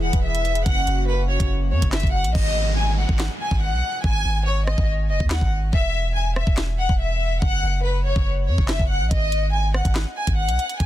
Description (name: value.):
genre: hip hop, drill.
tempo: 142 BPM.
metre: 4/4.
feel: half-time.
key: G# minor.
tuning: A4 = 440 Hz.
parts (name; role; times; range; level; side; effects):
warm chamber violin section; melody; 0.0-10.9 s; B4 to G#5; -25 LUFS; left 2 dB; none.
hollow soft pad; sustained chords; 0.0-2.3 s; E3 to B4; -31 LUFS; left 1 dB; chorus.
long sustained 808-style bass; bass; 0.0-10.9 s; E1 to F#2; -22 LUFS; equal; none.
drill drum kit; drums; 0.1-10.9 s; crash cymbal, handclaps, hi-hat, kick drum, rim click, snare drum; -22 LUFS; equal; soft clipping on snare.
downlifter; sound effects; 2.4-5.7 s; none; -32 LUFS; right 1 dB; none.
room: little or no reverb.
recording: dense, heavily limited modern master.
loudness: -19 LUFS.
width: side -13 dB against mid.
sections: 0.0-2.4 A section; 2.4-10.9 B section.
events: hi-hats muted 2.4-9.1.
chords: 0.0 E; 0.7 F#; 2.4 G#5; 5.7 N.C.; 7.4 F#5; 9.1 G#5.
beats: 0.24 | 0.66 1.08 1.50 1.93 | 2.35 2.77 3.19 3.62 | 4.04 4.46 4.88 5.31 | 5.73 6.15 6.58 7.00 | 7.42 7.84 8.27 8.69 | 9.11 9.53 9.96 10.38 | 10.80.